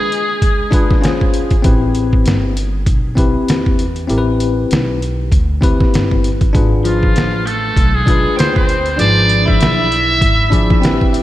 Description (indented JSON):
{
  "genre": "hip hop, jazz-hop",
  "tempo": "98 BPM",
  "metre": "4/4",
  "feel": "swing 57% on 16ths",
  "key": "unclear",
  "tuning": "A4 = 440 Hz",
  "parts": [
    { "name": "trumpet with metal mute", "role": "melody", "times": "0.0-1.3, 6.9-11.1 s", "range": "F4 to E5", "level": "-17 LUFS", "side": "equal", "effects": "diffuse ambient delay" },
    { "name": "clean electric guitar", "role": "second line", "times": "0.0-1.3, 6.8-11.1 s", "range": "F3 to E4", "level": "-22 LUFS", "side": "right 2 dB", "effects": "analog chorus" },
    { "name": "bell-like tine electric piano", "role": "accompaniment", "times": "0.0-11.2 s", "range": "F3 to B5", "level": "-18 LUFS", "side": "left 3 dB", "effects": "medium stereo tremolo" },
    { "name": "trip hop sampler-style drum kit", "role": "drums", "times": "0.1-11.2 s", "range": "hi-hat, kick drum, snare drum", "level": "-15 LUFS", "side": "equal", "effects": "none" },
    { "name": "upright bass", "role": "bass", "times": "1.6-11.2 s", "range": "G1 to E2", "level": "-18 LUFS", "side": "equal", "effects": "none" }
  ],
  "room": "moderate lush hall reverb, RT60 2.6 s",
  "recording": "dreamy mix soaked in reverb",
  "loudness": "-11 LUFS",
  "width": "side -14 dB against mid",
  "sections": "0.0-11.2 A section",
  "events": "break 0.0-1.6; tine electric piano fill 10.2-11.2",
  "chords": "0.0 G7b9 (rootless); 1.0 C#maj7/G#; 1.6 Am9; 6.5 E7b9/G#"
}